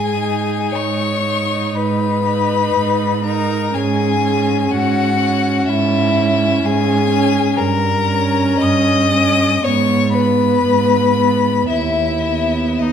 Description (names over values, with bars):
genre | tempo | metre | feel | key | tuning
classical, slow romantic movement for string quartet | 50-66 BPM | 4/4 | rubato | G# minor | A4 = 440 Hz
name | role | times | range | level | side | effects
clear violin | melody | 0.0-12.9 s | D#5 to D#6 | -20 LUFS | left 8 dB | none
rich violin | second line | 0.0-12.9 s | D#4 to D#5 | -20 LUFS | left 4 dB | none
rich cello | bass | 0.0-12.9 s | D#2 to G#2 | -20 LUFS | right 5 dB | none
rich viola | accompaniment | 0.2-12.9 s | B3 to D#4 | -19 LUFS | right 2 dB | none
room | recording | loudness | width
wet recital hall reverb, RT60 1.5 s | none | -14 LUFS | side -8 dB against mid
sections
0.0-12.9 A section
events
none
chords
0.0 G#m; 3.7 C#madd11/G#; 7.6 D#7/G; 9.6 G#m; 11.7 Badd11/D#